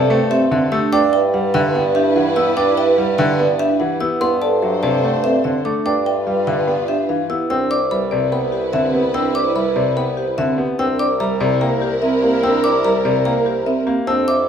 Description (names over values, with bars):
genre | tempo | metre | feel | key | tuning
classical, minimalist pattern music | 146 BPM | 4/4 | straight | G major, C major from 7.5 s | A4 = 440 Hz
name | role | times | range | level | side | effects
marimba with medium hard mallets | melody | 0.0-14.5 s | G4 to A5 | -23 LUFS | left 5 dB | none
mellow wooden-headed alto flute | second line | 0.0-14.5 s | A4 to C5 | -26 LUFS | right 2 dB | none
clear grand piano | accompaniment | 0.0-14.3 s | C3 to D4 | -21 LUFS | equal | none
warm studio string section | sustained chords | 0.0-14.5 s | C4 to C5 | -27 LUFS | equal | none
vibraphone with soft mallets | arpeggios | 0.0-14.5 s | C4 to D5 | -21 LUFS | right 5 dB | none
xylophone with plastic mallets | arpeggios | 0.0-14.5 s | E5 to E6 | -24 LUFS | left 2 dB | none
warm bassoon | bass | 0.0-14.5 s | C2 to G2 | -23 LUFS | equal | none
room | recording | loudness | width
moderate large studio reverb, RT60 1.2 s | heard from further back in the room | -15 LUFS | side -8 dB against mid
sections
0.0-7.5 A section; 7.5-14.5 B section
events
none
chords
0.0 Am7/G; 0.9 G6; 4.2 D9/G; 5.9 G7; 7.5 Cmaj7; 10.8 C7